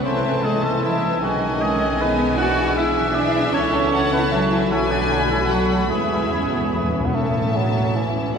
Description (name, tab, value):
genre	classical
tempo	153 BPM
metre	3/4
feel	straight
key	A major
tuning	A4 = 445 Hz
part	warm symphonic violin section	melody	0.0-8.4 s	F#5 to B5	-31 LUFS	left 2 dB	none
part	warm symphonic violin section	second line	0.0-8.4 s	C#4 to G#5	-27 LUFS	left 3 dB	none
part	warm symphonic viola section	accompaniment	0.0-8.4 s	A3 to F#4	-27 LUFS	right 2 dB	none
part	dark French horn section	sustained chords	0.0-6.9 s	D#3 to B4	-27 LUFS	left 4 dB	none
part	dark symphonic double bass section	bass	0.0-8.4 s	A1 to E2	-27 LUFS	right 3 dB	none
part	rich symphonic cello section	bass	0.0-8.4 s	D2 to F#4	-25 LUFS	right 1 dB	none
part	mellow concert flute	second line	0.1-7.0 s	G#5 to B5	-31 LUFS	left 2 dB	none
part	warm oboe	second line	0.1-6.9 s	D4 to F#5	-25 LUFS	right 1 dB	none
part	clear bassoon	accompaniment	0.1-8.4 s	D#3 to B3	-28 LUFS	equal	none
part	timpani	percussion	5.9-7.1 s	E2	-27 LUFS	left 2 dB	none
room	wet cathedral reverb, RT60 6.4 s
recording	none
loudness	-17 LUFS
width	side -6 dB against mid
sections	0.0-7.1 A section; 7.1-8.4 B section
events	timpani fill 5.9-7.1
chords	0.1 Am/C; 1.2 B69; 2.4 E7/B; 3.5 A/C#; 4.7 Bm7; 5.9 E; 7.1 A